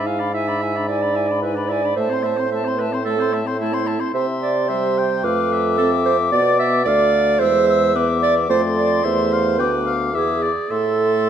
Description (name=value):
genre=quick classical-period movement for wind quintet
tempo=110 BPM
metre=4/4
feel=straight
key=A minor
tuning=A4 = 440 Hz
part: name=silver concert flute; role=melody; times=0.0-11.3 s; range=G#5 to E6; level=-24 LUFS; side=left 8 dB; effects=none
part: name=clear oboe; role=second line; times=0.0-11.3 s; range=C5 to G5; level=-27 LUFS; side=left 5 dB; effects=none
part: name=mellow French horn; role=accompaniment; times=0.0-11.3 s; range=G3 to E4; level=-26 LUFS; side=left 1 dB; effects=none
part: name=mellow clarinet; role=accompaniment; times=0.0-11.3 s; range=E4 to F5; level=-20 LUFS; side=right 4 dB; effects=none
part: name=mellow bassoon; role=bass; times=0.0-11.3 s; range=D2 to C3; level=-24 LUFS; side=right 1 dB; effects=none
room=wet recital hall reverb, RT60 1.6 s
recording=none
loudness=-16 LUFS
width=side -9 dB against mid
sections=0.0-11.3 A section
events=none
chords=0.0 E7/G#; 2.0 Am; 4.2 C; 5.2 Fmaj7; 6.3 Bdim; 7.4 E7; 8.5 F; 9.6 Bdim/D; 10.1 E7; 10.7 Am